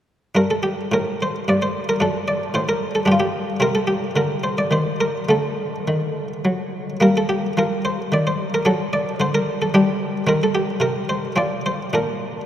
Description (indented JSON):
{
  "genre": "classical, baroque-style suite movement for harpsichord",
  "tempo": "100-113 BPM",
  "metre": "3/4",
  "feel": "rubato",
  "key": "G minor",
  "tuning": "A4 = 437 Hz",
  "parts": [
    { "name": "buff-stop harpsichord", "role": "solo", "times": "0.3-12.5 s", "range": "F#2 to D5", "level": "-18 LUFS", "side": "equal", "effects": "none" }
  ],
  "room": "wet cathedral reverb, RT60 6.5 s",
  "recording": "none",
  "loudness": "-18 LUFS",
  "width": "side -10 dB against mid",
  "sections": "0.3-12.5 A section",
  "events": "none",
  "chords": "0.3 G5; 2.0 D/F#; 3.1 G5; 3.6 Cm; 5.3 D; 7.0 Gm; 8.7 D/F#; 9.7 G5; 10.3 Cm/Eb; 11.4 F5; 11.9 Bb",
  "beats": "| 0.34 0.91 1.46 | 1.99 2.53 3.06 | 3.60 4.14 4.70 | 5.28 5.86 6.43 | 6.99 7.56 8.12 | 8.65 9.19 9.73 | 10.27 10.80 11.35 | 11.93"
}